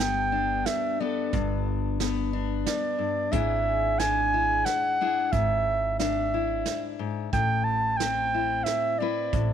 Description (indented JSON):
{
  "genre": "acoustic folk duo or small band",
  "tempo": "90 BPM",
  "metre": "3/4",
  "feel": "straight",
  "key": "unclear",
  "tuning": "A4 = 444 Hz",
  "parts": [
    { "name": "dark clarinet", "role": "melody", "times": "0.0-9.5 s", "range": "D5 to A5", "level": "-26 LUFS", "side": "right 2 dB", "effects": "none" },
    { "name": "fingerpicked steel-string acoustic guitar", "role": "accompaniment", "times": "0.0-9.5 s", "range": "G2 to B4", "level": "-30 LUFS", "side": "left 10 dB", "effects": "none" },
    { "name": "upright bass", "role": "bass", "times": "0.0-9.5 s", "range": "G1 to A1", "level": "-30 LUFS", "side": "right 2 dB", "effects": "none" },
    { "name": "soft brush drum kit", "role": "drums", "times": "0.0-9.5 s", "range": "hi-hat, kick drum, snare drum", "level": "-32 LUFS", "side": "right 6 dB", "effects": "none" }
  ],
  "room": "light reverb",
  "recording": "1960s-style stereo with parts hard left and right",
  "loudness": "-24 LUFS",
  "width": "side -8 dB against mid",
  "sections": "0.0-9.5 A section",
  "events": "none",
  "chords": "0.0 G; 3.3 E7/G#; 7.3 Amadd9"
}